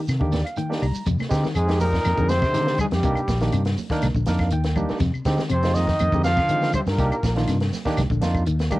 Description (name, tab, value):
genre	afrobeat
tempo	122 BPM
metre	4/4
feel	straight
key	F dorian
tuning	A4 = 440 Hz
part	clean electric guitar	arpeggios	0.0-8.8 s	C3 to G3	-29 LUFS	left 4 dB	spring reverb
part	fingered electric bass	bass	0.1-8.8 s	Bb1 to D3	-22 LUFS	equal	none
part	compact cocktail drum kit	drums	0.1-8.8 s	hi-hat, kick drum, snare drum	-29 LUFS	equal	none
part	claves	percussion	0.1-8.8 s	none	-37 LUFS	left 4 dB	none
part	congas	percussion	0.1-8.8 s	none	-34 LUFS	right 5 dB	none
part	shekere	percussion	0.1-8.8 s	none	-35 LUFS	right 2 dB	none
part	barky tine electric piano	accompaniment	0.2-8.8 s	Ab3 to Bb5	-28 LUFS	right 2 dB	none
part	breathy trumpet	melody	1.6-7.3 s	G4 to F5	-24 LUFS	equal	none
part	breathy trumpet	second line	1.6-7.4 s	G3 to F4	-35 LUFS	right 2 dB	none
part	bright trombone section	second line	1.6-7.3 s	G2 to F3	-33 LUFS	right 1 dB	analog delay
room	light reverb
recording	home recording on cassette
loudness	-19 LUFS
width	side -18 dB against mid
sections	0.0-1.1 A section; 1.1-8.8 B section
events	tine electric piano fill 0.1-1.1, 4.0-5.0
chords	0.0 Cm9; 1.1 Fm7; 3.0 Cm9; 5.0 Fm7; 7.0 Cm9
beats	0.08 0.57 | 1.07 1.56 2.05 2.55 | 3.04 3.53 4.03 4.52 | 5.01 5.51 6.00 6.49 | 6.99 7.48 7.97 8.47